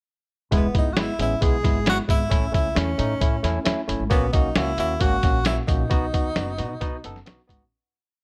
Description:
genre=uptempo 1960s-style soul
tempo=133 BPM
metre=4/4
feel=straight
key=E major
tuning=A4 = 440 Hz
part: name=barky tine electric piano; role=accompaniment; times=0.5-7.6 s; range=G#3 to A4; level=-30 LUFS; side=equal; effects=overdrive
part: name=upright bass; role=bass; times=0.5-7.7 s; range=E1 to B2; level=-29 LUFS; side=equal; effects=none
part: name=lo-fi sampler-style drum kit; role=drums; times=0.5-7.6 s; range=hi-hat, kick drum, snare drum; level=-25 LUFS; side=equal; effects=none
part: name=breathy tenor saxophone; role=melody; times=0.6-7.4 s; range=B3 to G#4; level=-29 LUFS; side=equal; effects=none
room=small room ambience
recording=none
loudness=-22 LUFS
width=mono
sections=0.5-7.7 verse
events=fade-out 5.9-7.7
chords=0.5 E; 2.3 A; 4.1 F#/A#; 5.9 B

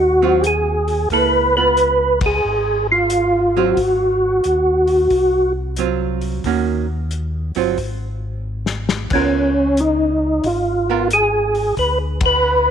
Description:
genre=soul jazz organ trio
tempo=90 BPM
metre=4/4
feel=swing 66% on 8ths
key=unclear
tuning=A4 = 440 Hz
part: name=percussive tonewheel organ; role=melody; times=0.0-12.7 s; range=Db4 to Cb5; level=-15 LUFS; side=equal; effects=slow rotary speaker, chorus vibrato
part: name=mellow tonewheel organ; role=bass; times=0.0-12.7 s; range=G1 to Eb2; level=-24 LUFS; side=left 1 dB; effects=slow rotary speaker
part: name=archtop guitar, miked and amplified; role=accompaniment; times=0.2-11.1 s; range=Eb3 to Bb4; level=-22 LUFS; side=right 11 dB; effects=none
part: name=warm soul drum kit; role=drums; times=0.4-12.3 s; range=crash cymbal, hi-hat, kick drum, ride cymbal, snare drum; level=-26 LUFS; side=left 3 dB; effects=none
room=moderate plate reverb, RT60 2.4 s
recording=1960s-style stereo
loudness=-15 LUFS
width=side -8 dB against mid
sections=0.0-12.7 A section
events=band accent 2.1-2.5, 12.1-12.4; drum fill 8.4-9.1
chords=0.0 Ab6; 1.1 Db6; 3.8 Ab6; 6.5 Ebm7; 7.8 N.C.; 9.1 Db13; 11.8 D5

